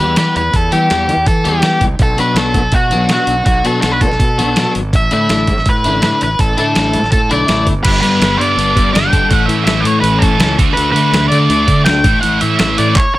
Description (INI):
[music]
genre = indie rock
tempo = 164 BPM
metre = 4/4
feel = straight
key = unclear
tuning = A4 = 435 Hz
[part]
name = octave-fuzz lead guitar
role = melody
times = 0.0-13.2 s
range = F#4 to G5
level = -15 LUFS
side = equal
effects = distortion, plate reverb
[part]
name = electric guitar at the edge of break-up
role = riff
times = 0.0-13.0 s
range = A2 to A4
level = -17 LUFS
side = left 4 dB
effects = ensemble chorus
[part]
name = fuzz fingered electric bass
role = bass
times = 0.0-12.9 s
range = G1 to E3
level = -18 LUFS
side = equal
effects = overdrive
[part]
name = dusty soul sampler-style drum kit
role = drums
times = 0.2-13.0 s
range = crash cymbal, handclaps, hi-hat, kick drum, snare drum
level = -15 LUFS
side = equal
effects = none
[part]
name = scooped high-gain guitar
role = riff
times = 7.9-13.0 s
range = G2 to A4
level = -19 LUFS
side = right 7 dB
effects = distortion, analog chorus
[sound]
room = light reverb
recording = none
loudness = -10 LUFS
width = side -16 dB against mid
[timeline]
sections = 0.0-7.9 A section; 7.9-13.2 B section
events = none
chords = 0.0 Em; 2.0 Bm; 4.9 Asus4; 7.9 Gadd9; 9.3 A; 10.6 D; 12.0 A